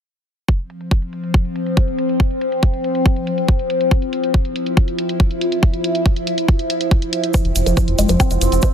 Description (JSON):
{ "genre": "psychedelic trance", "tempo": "140 BPM", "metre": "4/4", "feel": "straight", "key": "unclear", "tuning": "A4 = 440 Hz", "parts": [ { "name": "overtone-sweeping drone", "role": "sustained chords", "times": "0.8-8.7 s", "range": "F3 to E4", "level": "-20 LUFS", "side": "left 1 dB", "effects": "chorus, built-in reverb, phaser, sidechain pumping" }, { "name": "electronic hi-hat", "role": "drums", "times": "0.5-8.7 s", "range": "none", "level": "-27 LUFS", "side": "right 1 dB", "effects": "low-pass filter on hats" }, { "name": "electronic kick drum", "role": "drums", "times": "0.5-8.7 s", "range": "none", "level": "-15 LUFS", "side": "equal", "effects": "none" }, { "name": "woody wave-folded pluck", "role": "riff", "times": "7.3-8.7 s", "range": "F3 to C4", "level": "-21 LUFS", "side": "moving between left 5 dB and right 4 dB", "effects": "chorus, auto-pan, sidechain pumping, dub echo" }, { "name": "cabasa", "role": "percussion", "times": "7.3-8.7 s", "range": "none", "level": "-29 LUFS", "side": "right 2 dB", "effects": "none" }, { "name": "round analog bass", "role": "bass", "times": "7.4-8.6 s", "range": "F1", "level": "-17 LUFS", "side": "equal", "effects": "none" } ], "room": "light reverb, digital ambience", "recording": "dense, heavily limited modern master", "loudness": "-16 LUFS", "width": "side -8 dB against mid", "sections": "0.5-8.7 A section", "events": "filter sweep on drum 0.5-8.7", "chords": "0.5 F5", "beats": "| 0.48 0.91 1.34 1.77 | 2.20 2.63 3.06 3.48 | 3.91 4.34 4.77 5.20 | 5.63 6.06 6.49 6.91 | 7.34 7.77 8.20 8.63" }